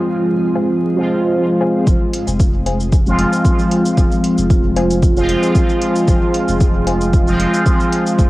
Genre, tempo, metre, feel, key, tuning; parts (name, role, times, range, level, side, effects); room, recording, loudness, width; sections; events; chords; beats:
dub techno; 114 BPM; 4/4; swing 53% on 16ths; F minor; A4 = 439 Hz
granular cloud pad; sustained chords; 0.0-1.9 s; Ab3 to Ab4; -25 LUFS; equal; built-in reverb, sidechain pumping
resonant sweep polysynth; stabs; 0.0-8.3 s; F3 to F4; -15 LUFS; equal; chorus, phaser, sidechain pumping, dub echo
warbly dusty pluck; riff; 0.6-7.1 s; C5 to Ab5; -27 LUFS; left 4 dB; chorus, sidechain pumping, dub echo
warm sub bass; bass; 1.9-8.3 s; F1; -21 LUFS; equal; sidechain pumping
electronic cabasa and hi-hat; drums; 1.9-8.3 s; -30 LUFS; left 1 dB; cassette tape
electronic kick drum; drums; 1.9-8.3 s; -14 LUFS; equal; cassette tape
light reverb; home recording on cassette, vinyl crackle; -12 LUFS; side -18 dB against mid
0.0-1.9 A section; 1.9-8.3 B section
0.0 Fm
0.29 0.82 1.34 | 1.87 2.40 2.92 3.45 | 3.98 4.50 5.03 5.55 | 6.08 6.61 7.13 7.66 | 8.19